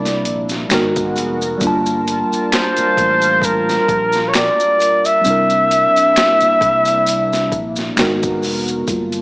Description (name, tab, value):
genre	R&B, neo-soul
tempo	66 BPM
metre	4/4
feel	swing 55% on 16ths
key	G dorian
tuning	A4 = 437 Hz
part	warm flugelhorn	melody	0.0-7.8 s	Bb4 to E5	-13 LUFS	equal	none
part	mellow tine electric piano	accompaniment	0.0-9.2 s	G3 to A5	-20 LUFS	equal	medium stereo tremolo
part	chorused pulse-width pad	sustained chords	0.0-9.2 s	C3 to A5	-24 LUFS	equal	none
part	fingered electric bass	bass	0.0-9.2 s	F1 to C2	-27 LUFS	equal	none
part	boom bap sampler-style drum kit	drums	0.1-9.2 s	hi-hat, kick drum, snare drum	-21 LUFS	equal	overdrive
part	maracas and finger snaps	percussion	0.1-9.2 s	none	-25 LUFS	equal	none
room	moderate plate reverb, RT60 2.4 s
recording	small speaker sound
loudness	-13 LUFS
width	side -26 dB against mid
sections	0.0-8.9 A section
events	none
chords	0.0 C9; 0.7 Abm9; 1.6 Gm9; 5.2 C9; 8.0 Abm9